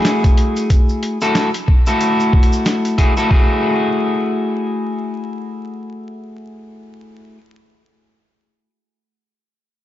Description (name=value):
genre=glitch hop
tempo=92 BPM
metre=4/4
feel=swing 59% on 16ths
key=F# minor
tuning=A4 = 439 Hz
part: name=electric guitar at the edge of break-up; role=stabs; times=0.0-7.4 s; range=A3 to A4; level=-18 LUFS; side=left 1 dB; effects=vintage 12-bit sampler grit, sidechain pumping, ping-pong delay
part: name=boom bap sampler-style drum kit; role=drums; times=0.0-3.1 s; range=hi-hat, snare drum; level=-21 LUFS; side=equal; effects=none
part: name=tube shaker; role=percussion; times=0.1-3.3 s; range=none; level=-33 LUFS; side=right 2 dB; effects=none
part: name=electronic kick drum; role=drums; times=0.2-3.5 s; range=none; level=-13 LUFS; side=equal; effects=none
room=light reverb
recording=vinyl crackle, nothing above 7.6 kHz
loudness=-14 LUFS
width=side -13 dB against mid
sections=0.0-3.3 A section; 3.3-5.9 B section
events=none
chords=0.0 F#m9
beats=0.05 | 0.70 1.35 2.00 2.66 | 3.31 3.96 4.61 5.26